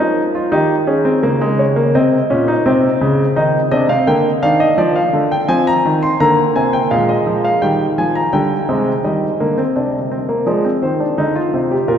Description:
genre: classical, baroque-style 3-part fugue for grand piano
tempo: 84 BPM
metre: 4/4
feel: straight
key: unclear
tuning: A4 = 440 Hz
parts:
  - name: warm grand piano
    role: solo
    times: 0.0-12.0 s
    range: Bb2 to C6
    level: -13 LUFS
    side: equal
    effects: none
room: wet cathedral reverb, RT60 4.6 s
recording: recorded in a church or concert hall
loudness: -13 LUFS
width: side -8 dB against mid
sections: 0.0-9.0 A section; 9.0-12.0 B section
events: none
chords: 0.0 N.C.; 0.5 Eb; 1.9 Bbsus24; 3.4 Eb; 4.8 Ddim; 6.2 Bb; 7.6 Eb; 9.0 Cm; 10.5 Fm7

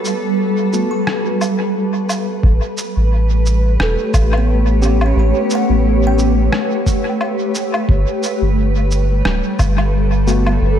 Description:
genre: ambient dub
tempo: 88 BPM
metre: 4/4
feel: swing 56% on 16ths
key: A mixolydian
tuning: A4 = 436 Hz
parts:
  - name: granular cloud pad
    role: sustained chords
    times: 0.0-10.8 s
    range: G3 to C#5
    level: -18 LUFS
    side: equal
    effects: built-in reverb
  - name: kalimba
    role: arpeggios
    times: 0.0-9.5 s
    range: B3 to C#6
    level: -26 LUFS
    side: right 1 dB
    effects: analog delay
  - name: electronic shaker, rim click and woodblock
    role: drums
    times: 0.0-10.6 s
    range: none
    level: -24 LUFS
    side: equal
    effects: overdrive, studio reverb, dub echo
  - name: bubbling stepped-filter texture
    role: texture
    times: 0.1-2.4 s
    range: B3 to B4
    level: -36 LUFS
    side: left 3 dB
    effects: none
  - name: mellow tine electric piano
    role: stabs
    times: 0.7-10.5 s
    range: A3 to G4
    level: -23 LUFS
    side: left 2 dB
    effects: medium stereo tremolo, dub echo
  - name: soft dub sub bass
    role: bass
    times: 2.4-10.8 s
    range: D1 to A1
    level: -14 LUFS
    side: equal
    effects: none
  - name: electronic kick drum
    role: drums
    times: 2.4-9.7 s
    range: none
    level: -16 LUFS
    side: equal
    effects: overdrive, studio reverb
room: moderate lush hall reverb, RT60 2.2 s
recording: dreamy mix soaked in reverb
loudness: -13 LUFS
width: side -9 dB against mid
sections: 0.0-2.4 A section; 2.4-10.8 B section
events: break 0.0-2.4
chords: 0.0 Gadd9; 2.4 A9; 7.9 Gadd9

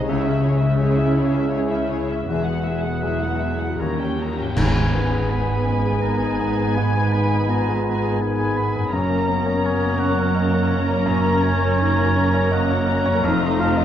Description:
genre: cinematic, emotional film score for orchestra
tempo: 83 BPM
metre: 3/4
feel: rubato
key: G# dorian from 4.6 s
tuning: A4 = 440 Hz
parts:
  - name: muted studio violin section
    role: melody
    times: 0.0-13.8 s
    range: C#5 to A#5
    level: -29 LUFS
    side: left 3 dB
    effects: none
  - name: dark clarinet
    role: second line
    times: 0.0-13.8 s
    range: A#3 to G#4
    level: -30 LUFS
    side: left 1 dB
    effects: none
  - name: muted studio violin section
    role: second line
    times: 0.0-13.8 s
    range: E4 to C5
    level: -33 LUFS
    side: left 2 dB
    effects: none
  - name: warm oboe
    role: second line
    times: 0.0-13.8 s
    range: C#5 to B5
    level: -29 LUFS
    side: right 1 dB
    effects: none
  - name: clear concert grand piano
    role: accompaniment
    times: 0.0-13.8 s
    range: C#2 to D#5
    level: -26 LUFS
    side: left 3 dB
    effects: none
  - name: muted studio viola section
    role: accompaniment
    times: 0.0-13.8 s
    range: G#3 to E4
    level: -31 LUFS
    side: right 2 dB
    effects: none
  - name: mellow French horn section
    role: sustained chords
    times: 0.0-13.8 s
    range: G3 to A#4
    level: -29 LUFS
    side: left 3 dB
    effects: none
  - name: concert harp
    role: arpeggios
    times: 0.0-13.8 s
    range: F2 to E5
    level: -28 LUFS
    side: left 5 dB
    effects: none
  - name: muted chamber cello section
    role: bass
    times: 0.0-13.8 s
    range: D#2 to C#3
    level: -25 LUFS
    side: right 2 dB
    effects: none
  - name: muted studio double bass section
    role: bass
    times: 0.0-13.8 s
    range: E1 to D#2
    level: -26 LUFS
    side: right 4 dB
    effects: none
  - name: cymbal swell, clash cymbals and concert bass drum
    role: percussion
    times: 0.1-6.0 s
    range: none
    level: -29 LUFS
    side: equal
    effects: none
  - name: mellow hollow concert flute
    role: second line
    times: 4.6-13.7 s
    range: G#5 to C#6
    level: -32 LUFS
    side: equal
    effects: none
  - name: timpani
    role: percussion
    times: 4.6-5.6 s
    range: G#2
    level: -25 LUFS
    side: right 2 dB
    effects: none
room: moderate scoring stage reverb, RT60 1.6 s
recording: worn, warbling old tape, cassette tape, warbly pitch drift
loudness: -18 LUFS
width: side -10 dB against mid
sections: 0.0-4.6 A section; 4.6-13.8 B section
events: band accent 4.6-5.3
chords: 0.1 C#m; 2.3 Eadd9; 3.8 D#7; 4.6 G#m; 8.9 F#; 13.2 F7

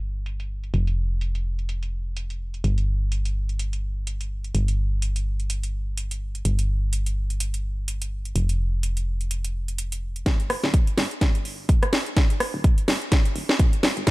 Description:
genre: piano house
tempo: 126 BPM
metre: 4/4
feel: swing 57% on 16ths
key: unclear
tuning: A4 = 440 Hz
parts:
  - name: solid FM bass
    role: bass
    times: 0.0-14.1 s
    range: D1 to Bb1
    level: -25 LUFS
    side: equal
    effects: sidechain pumping, high-pass filter
  - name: house drum kit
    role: drums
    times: 0.3-14.1 s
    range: hi-hat, rim click, snare drum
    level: -26 LUFS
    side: equal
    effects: low-pass filter on hats, low-pass filter on snare, low-pass filter on room
  - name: electronic kick drum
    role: drums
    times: 10.3-14.1 s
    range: none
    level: -19 LUFS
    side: equal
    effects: none
room: little or no reverb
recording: none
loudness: -22 LUFS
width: side -20 dB against mid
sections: 0.0-10.3 A section; 10.3-14.1 B section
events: build-up 10.3-14.1; drum fill 10.3-14.1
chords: none

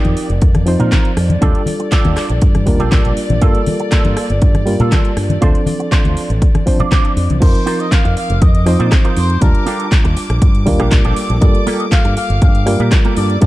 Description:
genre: nu-disco, nu disco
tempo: 120 BPM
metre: 4/4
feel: straight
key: G minor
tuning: A4 = 440 Hz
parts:
  - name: barky reed electric piano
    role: accompaniment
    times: 0.0-13.5 s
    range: F3 to A5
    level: -20 LUFS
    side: equal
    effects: fast tremolo, sidechain pumping, ping-pong delay
  - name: dark studio violin section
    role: sustained chords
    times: 0.0-13.5 s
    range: D5 to D6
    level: -28 LUFS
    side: left 1 dB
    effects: sidechain pumping
  - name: electric guitar with an envelope filter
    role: riff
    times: 0.0-13.4 s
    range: Bb3 to D5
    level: -23 LUFS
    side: right 4 dB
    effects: ensemble chorus, ping-pong delay
  - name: fingered electric bass with an envelope filter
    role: bass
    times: 0.0-13.5 s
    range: F1 to Bb2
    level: -16 LUFS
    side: equal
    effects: none
  - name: house drum kit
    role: drums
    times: 0.0-13.5 s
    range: crash cymbal, handclaps, hi-hat, rim click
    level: -24 LUFS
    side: equal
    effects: none
  - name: congas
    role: percussion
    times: 0.1-7.4 s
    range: none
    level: -21 LUFS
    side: left 2 dB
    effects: none
  - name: electronic kick drum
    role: drums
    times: 0.4-13.5 s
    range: none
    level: -12 LUFS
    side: equal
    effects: none
  - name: muted trumpet section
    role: melody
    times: 7.4-13.5 s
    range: Bb4 to F5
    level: -23 LUFS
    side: left 1 dB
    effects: dub echo
room: digital ambience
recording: dark, warm production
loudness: -11 LUFS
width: side -17 dB against mid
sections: 0.0-7.4 A section; 7.4-13.5 B section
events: drop 7.4-13.5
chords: 0.0 F7sus4; 1.4 Ebmaj9#11; 3.4 Gm9; 5.4 Dm7; 7.4 F7sus4; 9.4 Ebmaj9#11; 11.4 Gm9

